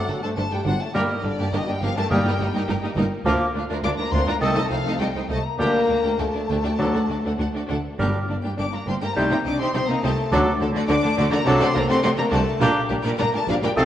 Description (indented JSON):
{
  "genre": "quick classical-period movement for symphony orchestra",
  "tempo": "104 BPM",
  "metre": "4/4",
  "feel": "straight",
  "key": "G minor",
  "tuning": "A4 = 440 Hz",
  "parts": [
    { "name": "rich chamber violin section", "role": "melody", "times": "0.0-13.8 s", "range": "D5 to D6", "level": "-29 LUFS", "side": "left 4 dB", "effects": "none" },
    { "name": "concert flute", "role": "second line", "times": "0.0-13.8 s", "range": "D6 to G6", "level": "-31 LUFS", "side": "equal", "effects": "none" },
    { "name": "warm French horn section", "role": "sustained chords", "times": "0.0-13.8 s", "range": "D3 to D4", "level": "-27 LUFS", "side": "left 2 dB", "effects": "none" },
    { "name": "clear chamber violin section", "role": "second line", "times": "0.1-13.8 s", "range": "D4 to G5", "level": "-32 LUFS", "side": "left 1 dB", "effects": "none" },
    { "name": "rich chamber viola section", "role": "accompaniment", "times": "0.1-13.8 s", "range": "G3 to Eb4", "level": "-28 LUFS", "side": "equal", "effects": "none" },
    { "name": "rich chamber cello section", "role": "bass", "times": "0.1-13.8 s", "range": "C2 to D3", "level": "-28 LUFS", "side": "right 2 dB", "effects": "none" },
    { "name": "rich chamber double bass section", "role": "bass", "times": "0.1-13.8 s", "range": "G1 to D2", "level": "-28 LUFS", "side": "right 2 dB", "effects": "none" },
    { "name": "clear oboe", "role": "second line", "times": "0.9-13.8 s", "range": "G4 to C5", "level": "-31 LUFS", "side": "right 1 dB", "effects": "none" },
    { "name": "warm clarinet", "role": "second line", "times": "0.9-13.8 s", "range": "Bb3 to Eb4", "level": "-30 LUFS", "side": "left 1 dB", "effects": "none" },
    { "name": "clear bassoon", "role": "accompaniment", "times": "0.9-13.8 s", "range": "Eb3 to Bb3", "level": "-28 LUFS", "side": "right 1 dB", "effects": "none" },
    { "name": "timpani", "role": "percussion", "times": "0.9-11.1 s", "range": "G2 to D3", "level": "-30 LUFS", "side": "left 1 dB", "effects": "none" }
  ],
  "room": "wet scoring stage reverb, RT60 1.8 s",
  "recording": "worn, warbling old tape, cassette tape, warbly pitch drift",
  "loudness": "-20 LUFS",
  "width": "side -11 dB against mid",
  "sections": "0.0-13.8 A section",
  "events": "none",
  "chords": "0.0 D/G; 0.9 Gm; 2.1 Eb/G; 3.3 Bb/D; 4.4 Adim/C; 5.6 Dsus4; 6.8 D; 8.0 Gm; 9.2 Cm; 10.3 D; 11.5 D7/C; 12.6 Gm/Bb"
}